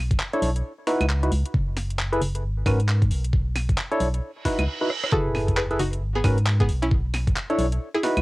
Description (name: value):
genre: UK garage, two-step garage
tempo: 134 BPM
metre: 4/4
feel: swing 61% on 16ths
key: F# dorian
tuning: A4 = 438 Hz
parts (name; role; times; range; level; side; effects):
- organ-like FM bass; bass; 0.0-8.2 s; F#1 to G#2; -24 LUFS; equal; none
- electronic kick drum; drums; 0.1-7.3 s; none; -23 LUFS; equal; studio reverb, cassette tape
- garage drum kit; drums; 0.1-8.2 s; claves, handclaps, hi-hat, rim click, snare drum; -30 LUFS; equal; studio reverb, cassette tape
- percussive organ stab; stabs; 0.3-8.2 s; C#4 to C#5; -25 LUFS; equal; chorus, cassette tape, analog delay
- reverse cymbal and sub drop; sound effects; 4.4-6.9 s; none; -32 LUFS; right 2 dB; none
- string-like resonator pluck; melody; 5.1-8.2 s; B3 to B4; -27 LUFS; equal; chorus, cassette tape
room: light reverb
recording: home recording on cassette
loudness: -21 LUFS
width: side -20 dB against mid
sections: 0.0-5.1 A section; 5.1-8.2 B section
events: reverse cymbal 4.4-5.1; drum fill 4.9; drop 5.1-8.2; impact 5.1-6.9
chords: 0.0 Bm11; 0.6 C#m11; 1.5 F#m11; 2.4 G#m11; 3.1 Bm11; 4.2 C#m11 (rootless); 5.1 F#m11; 6.0 G#m11; 6.7 Bm11